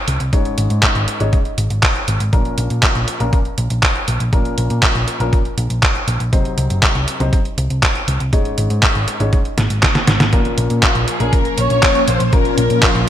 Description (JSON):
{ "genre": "italo disco", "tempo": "120 BPM", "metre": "4/4", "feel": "straight", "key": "Bb minor", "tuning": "A4 = 443 Hz", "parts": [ { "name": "hollow-body short-scale picked electric bass", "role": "bass", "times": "0.1-13.0 s", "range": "Gb1 to Bb2", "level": "-18 LUFS", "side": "equal", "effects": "none" }, { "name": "detuned 8-bit digital drum machine", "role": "drums", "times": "0.1-13.1 s", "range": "handclaps, hi-hat, snare drum", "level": "-18 LUFS", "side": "equal", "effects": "studio reverb, gated reverb" }, { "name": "dark grand piano", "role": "stabs", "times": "0.3-13.1 s", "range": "Ab2 to Db5", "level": "-24 LUFS", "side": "left 3 dB", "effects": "none" }, { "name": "electronic kick drum", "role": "drums", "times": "0.3-12.9 s", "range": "none", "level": "-16 LUFS", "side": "equal", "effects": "studio reverb" }, { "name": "phased string machine", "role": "sustained chords", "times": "10.3-13.1 s", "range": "F3 to Db4", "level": "-22 LUFS", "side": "equal", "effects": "ensemble chorus, phaser" }, { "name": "dark studio violin section", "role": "melody", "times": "10.8-13.1 s", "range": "F4 to Db5", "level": "-18 LUFS", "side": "left 3 dB", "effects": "digital delay" } ], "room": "light reverb", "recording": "bright 1980s-style digital production", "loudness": "-13 LUFS", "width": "side -11 dB against mid", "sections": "0.0-13.1 A section", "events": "drum fill 9.6-10.3", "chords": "0.3 Absus4; 2.3 Bbm; 6.3 Cdim; 8.3 Absus4; 10.3 Bbm" }